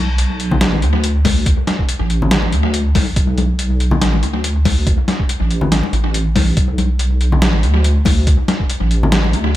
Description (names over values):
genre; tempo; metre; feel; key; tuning
deep dubstep; 141 BPM; 4/4; swing 55% on 16ths, half-time; B minor; A4 = 440 Hz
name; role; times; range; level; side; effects
deep soft wobble bass; bass; 0.0-9.6 s; A1 to D2; -15 LUFS; equal; chorus, tube saturation
trip hop sampler-style drum kit; drums; 0.2-9.4 s; hi-hat, snare drum; -20 LUFS; equal; tape echo
congas; percussion; 0.5-9.3 s; none; -22 LUFS; left 4 dB; tape echo
electronic kick drum; drums; 1.2-8.7 s; none; -16 LUFS; equal; none
room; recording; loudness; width
little or no reverb; echo-heavy mix; -13 LUFS; side -14 dB against mid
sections
0.0-9.6 A section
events
none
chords
none